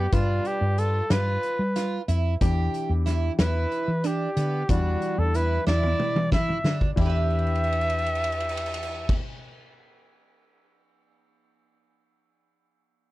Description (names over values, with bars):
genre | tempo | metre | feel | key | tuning
progressive instrumental, band music in an uneven meter | 184 BPM (eighths) | 7/8 | straight | E minor | A4 = 440 Hz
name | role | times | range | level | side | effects
warm trumpet | melody | 0.0-9.2 s | F4 to E5 | -28 LUFS | equal | none
warm concert grand piano | accompaniment | 0.0-9.2 s | E3 to B4 | -35 LUFS | left 6 dB | none
picked twelve-string acoustic guitar | arpeggios | 0.0-9.2 s | B3 to E5 | -33 LUFS | right 7 dB | none
woody fretless electric bass | bass | 0.0-9.2 s | E2 to G3 | -25 LUFS | equal | none
loose indie drum kit | drums | 0.1-10.7 s | crash cymbal, hi-hat, kick drum, ride cymbal, snare drum, toms | -27 LUFS | equal | none
room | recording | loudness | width
little or no reverb | none | -22 LUFS | side -17 dB against mid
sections
0.0-7.0 A section; 7.0-9.3 B section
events
drum fill 5.7-7.0, 7.3-9.1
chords
0.1 G7; 2.4 Em7